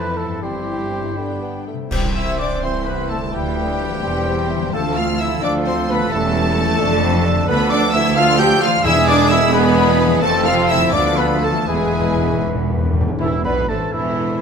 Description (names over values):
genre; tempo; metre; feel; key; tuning
classical, dramatic, fast romantic movement for symphony orchestra; 77-89 BPM (dotted quarters); 6/8; rubato; C major, A minor from 7.5 s; A4 = 440 Hz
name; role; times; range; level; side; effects
warm symphonic violin section; melody; 0.0-14.4 s; E4 to G6; -25 LUFS; left 3 dB; none
dark clarinet; second line; 0.0-1.7, 13.2-14.4 s; D4 to B4; -30 LUFS; left 2 dB; none
rich symphonic violin section; second line; 0.0-14.4 s; D4 to G5; -28 LUFS; left 2 dB; none
silver concert flute; second line; 0.0-14.4 s; G4 to G5; -27 LUFS; left 2 dB; none
warm oboe; second line; 0.0-14.4 s; G4 to C6; -26 LUFS; right 2 dB; none
clear symphonic viola section; accompaniment; 0.0-14.4 s; E3 to G4; -27 LUFS; right 2 dB; none
mellow bassoon; accompaniment; 0.0-14.4 s; D3 to F4; -27 LUFS; right 2 dB; none
mellow French horn section; sustained chords; 0.0-14.4 s; E3 to G4; -25 LUFS; left 4 dB; none
concert harp; arpeggios; 0.0-14.4 s; F2 to E5; -27 LUFS; left 9 dB; none
mellow trumpet; stabs; 0.0-14.4 s; E4 to C5; -26 LUFS; right 3 dB; none
rich symphonic cello section; bass; 0.0-14.4 s; C2 to B2; -24 LUFS; right 2 dB; none
rich symphonic double bass section; bass; 0.0-14.4 s; E1 to D2; -24 LUFS; right 4 dB; none
clear trombone section; sustained chords; 1.9-12.9 s; E3 to D4; -27 LUFS; right 3 dB; none
clash cymbals and concert bass drum; percussion; 1.9-2.8 s; none; -27 LUFS; equal; none
timpani; percussion; 8.9-13.2 s; E2; -24 LUFS; left 1 dB; none
room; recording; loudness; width
moderate scoring stage reverb, RT60 1.5 s; none; -15 LUFS; side -6 dB against mid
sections
0.0-1.9 A section; 1.9-13.2 A section; 13.2-14.4 B section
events
band accent 1.9-2.4; timpani fill 11.7-13.2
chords
0.4 C/G; 1.2 G; 1.9 C; 3.3 G7/D; 4.0 C/E; 4.7 Dm7; 6.1 A7/E; 6.8 Dm/F; 7.5 Bm7b5/D; 8.9 E7; 10.2 F; 10.9 Bm7b5/D; 11.7 E; 13.2 Am/E